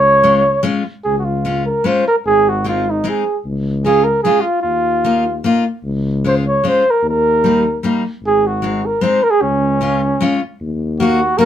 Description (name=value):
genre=alpine folk, alpine dance band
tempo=150 BPM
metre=3/4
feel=straight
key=Db major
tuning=A4 = 439 Hz
part: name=mellow flugelhorn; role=melody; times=0.0-11.5 s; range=Db4 to Db5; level=-14 LUFS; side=right 1 dB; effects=none
part: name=mellow tuba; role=bass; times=0.0-11.4 s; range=Ab1 to Eb2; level=-20 LUFS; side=left 2 dB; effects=none
part: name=picked steel-string acoustic guitar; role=accompaniment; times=0.2-11.5 s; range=G3 to Gb4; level=-18 LUFS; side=left 3 dB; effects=none
room=moderate small room ambience, RT60 0.5 s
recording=band playing live in one room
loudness=-13 LUFS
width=side -10 dB against mid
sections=0.0-1.0 A section; 1.0-10.6 A section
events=none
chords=0.0 Db; 2.3 Ab; 3.5 Db; 4.6 Ebsus2; 5.8 Db; 7.0 Eb; 8.2 Ab7; 9.4 Db; 10.6 Ebm